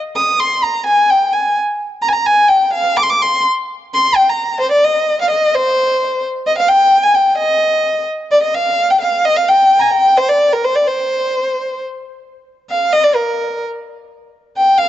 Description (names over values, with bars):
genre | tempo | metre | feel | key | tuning
klezmer | 129 BPM | 2/4 | straight | C minor | A4 = 439 Hz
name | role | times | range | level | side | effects
warm violin | solo | 0.2-14.9 s | Bb4 to Eb6 | -12 LUFS | equal | none
room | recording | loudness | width
moderate plate reverb, RT60 2.4 s | dark, warm production, nothing above 7.8 kHz | -12 LUFS | side -12 dB against mid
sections
0.0-4.6 A section; 4.6-12.0 B section; 12.0-14.9 C section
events
violin solo 0.0-4.6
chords
none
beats
0.40 | 0.87 1.33 | 1.80 2.27 | 2.73 3.20 | 3.67 4.13 | 4.60 5.06 | 5.53 5.99 | 6.46 6.92 | 7.39 7.85 | 8.31 8.78 | 9.24 9.70 | 10.16 10.63 | 11.09 11.55 | 12.01 12.47 | 12.93 13.39 | 13.85 14.31 | 14.77